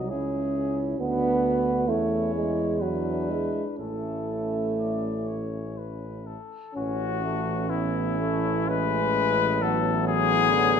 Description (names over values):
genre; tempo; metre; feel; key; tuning
classical, hymn-like piece for brass band; 63 BPM; 3/4; uneven beats, rubato; A major; A4 = 441 Hz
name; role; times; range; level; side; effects
mellow cornet; melody; 0.0-10.8 s; E4 to D#5; -28 LUFS; left 8 dB; none
dark French horn section; second line; 0.0-10.8 s; B3 to F#4; -33 LUFS; right 3 dB; none
mellow trombone section; accompaniment; 0.0-10.8 s; F#3 to E4; -34 LUFS; left 2 dB; none
warm euphonium; accompaniment; 0.0-10.8 s; D3 to C#4; -28 LUFS; right 3 dB; none
mellow tuba; bass; 0.0-10.8 s; A1 to E2; -32 LUFS; equal; none
room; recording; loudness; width
moderate recital hall reverb, RT60 1.2 s; none; -23 LUFS; side -7 dB against mid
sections
0.0-6.8 A section; 6.8-10.8 B section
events
none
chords
0.1 C#m; 1.0 Bm/D; 1.9 A/E; 2.8 E7; 3.8 A; 9.6 Bm7/A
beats
0.11 | 1.00 1.89 2.83 | 3.80 4.79 5.77 | 6.75 7.70 8.69 | 9.62 10.50